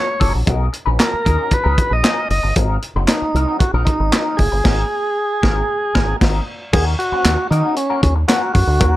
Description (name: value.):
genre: funk.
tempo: 115 BPM.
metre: 4/4.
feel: straight.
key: Eb dorian.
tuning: A4 = 440 Hz.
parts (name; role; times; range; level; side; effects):
tonewheel organ; melody; 0.0-9.0 s; Db4 to D#5; -19 LUFS; right 1 dB; overdrive.
clean electric guitar; accompaniment; 0.1-9.0 s; F#3 to C5; -25 LUFS; left 5 dB; wah.
fingered electric bass with an envelope filter; bass; 0.2-9.0 s; F#1 to Eb3; -18 LUFS; equal; none.
tight funk drum kit; drums; 0.2-8.9 s; crash cymbal, handclaps, hi-hat, kick drum, snare drum; -17 LUFS; equal; none.
room: light reverb.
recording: none.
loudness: -14 LUFS.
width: side -15 dB against mid.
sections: 0.0-6.7 A section; 6.7-9.0 B section.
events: band accent 4.7-6.7.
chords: 0.0 Bmaj9; 2.6 Ab9; 6.7 Ebm7.